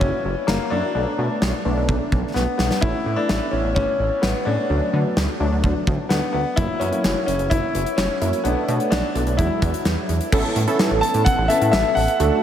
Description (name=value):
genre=synth-pop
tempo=128 BPM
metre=4/4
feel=straight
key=A major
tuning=A4 = 439 Hz
part: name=clear concert grand piano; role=melody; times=0.0-12.4 s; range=A#3 to A5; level=-23 LUFS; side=left 2 dB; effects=analog delay
part: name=warm analog keys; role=accompaniment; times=0.0-12.4 s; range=F#3 to A4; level=-25 LUFS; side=right 1 dB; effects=chorus
part: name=chorused synth bass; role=bass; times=0.0-12.3 s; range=F#1 to D3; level=-23 LUFS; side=right 1 dB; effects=none
part: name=gated 80s drum kit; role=drums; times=0.0-12.3 s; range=crash cymbal, hi-hat, kick drum, snare drum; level=-24 LUFS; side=equal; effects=none
room=wet huge ambient reverb, RT60 7.4 s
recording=dreamy mix soaked in reverb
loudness=-18 LUFS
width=side -10 dB against mid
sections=0.0-10.3 A section; 10.3-12.4 B section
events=drum fill 2.4-2.8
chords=0.0 F#7; 0.9 Bm7; 2.8 Aadd9; 4.7 D; 6.6 F#7; 8.4 Bm7; 9.4 Eadd9; 10.3 Aadd9